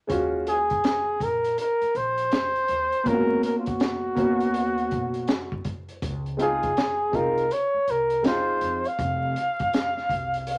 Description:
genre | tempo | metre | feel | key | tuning
hip hop, jazz-hop | 81 BPM | 4/4 | swing 63% on 16ths | unclear | A4 = 440 Hz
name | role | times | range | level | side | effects
dark upright piano | accompaniment | 0.1-8.8 s | Ab3 to Gb4 | -28 LUFS | equal | none
upright bass | bass | 0.1-10.6 s | F1 to F2 | -37 LUFS | equal | none
crunchy breakbeat drum kit | drums | 0.1-10.6 s | hi-hat, kick drum, snare drum | -32 LUFS | equal | none
breathy flugelhorn | melody | 0.5-10.6 s | F4 to F5 | -26 LUFS | equal | none
room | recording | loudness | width
moderate studio reverb, RT60 0.6 s | vinyl crackle | -25 LUFS | mono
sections
0.1-10.6 A section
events
none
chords
0.1 Ebm11; 3.1 Abm11 (rootless); 6.0 Dbmaj7; 9.0 F5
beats
| 0.10 0.84 1.58 2.32 | 3.06 3.80 4.54 5.28 | 6.02 6.76 7.50 8.24 | 8.98 9.72 10.46

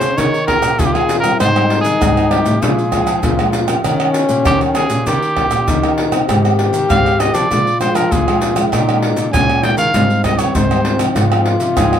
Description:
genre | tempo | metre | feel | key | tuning
samba and choro | 98 BPM | 4/4 | straight | Ab major | A4 = 440 Hz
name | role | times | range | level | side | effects
warm trumpet | melody | 0.0-12.0 s | G4 to Ab5 | -18 LUFS | right 1 dB | none
mellow trombone | second line | 0.0-12.0 s | C4 to G4 | -19 LUFS | left 4 dB | none
nylon-string guitar | accompaniment | 0.0-12.0 s | F2 to Ab4 | -22 LUFS | left 1 dB | none
nylon-string guitar | bass | 0.0-12.0 s | Ab2 to F3 | -19 LUFS | right 1 dB | none
maracas, pandeiro, surdo and tamborim | percussion | 0.0-12.0 s | none | -17 LUFS | right 1 dB | none
room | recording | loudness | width
little or no reverb | close, detailed microphones | -12 LUFS | side -9 dB against mid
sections
0.0-12.0 A section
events
none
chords
0.2 Eb7sus4; 1.4 Abmaj7; 2.6 Bb7; 3.8 Eb7; 6.3 Abadd9; 7.5 Bb7; 8.7 Eb7sus4/Bb; 9.9 Abmaj7; 11.2 Fm7/Ab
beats
0.17 0.79 | 1.40 2.01 2.62 3.23 | 3.84 4.46 5.07 5.68 | 6.29 6.90 7.51 8.12 | 8.72 9.33 9.94 10.55 | 11.16 11.77

